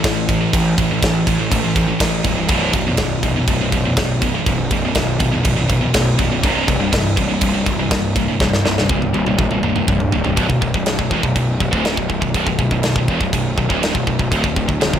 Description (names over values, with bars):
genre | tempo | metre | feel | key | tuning
heavy metal | 122 BPM | 4/4 | straight | B phrygian | A4 = 440 Hz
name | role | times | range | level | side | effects
high-gain distorted guitar | riff | 0.0-15.0 s | B1 to E3 | -18 LUFS | equal | distortion
fuzz picked electric bass | bass | 0.0-15.0 s | B0 to A1 | -21 LUFS | equal | overdrive
tight metal drum kit | drums | 0.0-15.0 s | crash cymbal, kick drum, snare drum, toms | -19 LUFS | equal | none
room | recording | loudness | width
little or no reverb | none | -15 LUFS | side -9 dB against mid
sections
0.0-10.4 A section; 10.4-15.0 B section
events
drum fill 8.4-10.4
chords
0.0 A5; 2.5 E5/B; 6.4 C5; 10.4 Bm; 14.3 D5